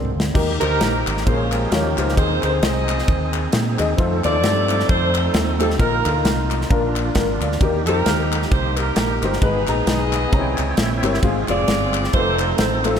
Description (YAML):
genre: uptempo gospel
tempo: 132 BPM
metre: 4/4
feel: swing 57% on 8ths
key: Eb major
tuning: A4 = 440 Hz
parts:
  - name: warm baby grand piano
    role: accompaniment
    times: 0.0-13.0 s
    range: Ab2 to Bb5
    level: -24 LUFS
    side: left 4 dB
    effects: none
  - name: bright tonewheel organ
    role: sustained chords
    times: 0.0-13.0 s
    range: D3 to G5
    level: -27 LUFS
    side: right 3 dB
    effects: fast rotary speaker, overdrive, chorus vibrato
  - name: fingered electric bass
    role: bass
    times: 0.0-13.0 s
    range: F1 to Bb2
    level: -23 LUFS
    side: equal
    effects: none
  - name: modern studio drum kit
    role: drums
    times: 0.0-13.0 s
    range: crash cymbal, kick drum, ride cymbal, snare drum, toms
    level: -22 LUFS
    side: equal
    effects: none
  - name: mellow saxophone section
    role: melody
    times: 0.6-13.0 s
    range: Db4 to Eb5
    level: -23 LUFS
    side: right 1 dB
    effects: none
  - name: group handclap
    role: percussion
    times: 0.6-12.9 s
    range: none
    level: -32 LUFS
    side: left 7 dB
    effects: none
room: moderate concert hall reverb, RT60 2.5 s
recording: none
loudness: -16 LUFS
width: side -8 dB against mid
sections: 0.4-13.0 A section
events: drum fill 0.0-0.4; tonewheel organ fill 10.6-11.2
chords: 0.4 Eb; 1.3 Bbm7; 1.7 Eb9; 2.2 Ab; 4.0 F7; 5.8 Bbsus4; 6.7 Bb; 7.6 Eb; 9.4 Abm; 10.3 C7b9; 11.2 Fm; 12.1 F7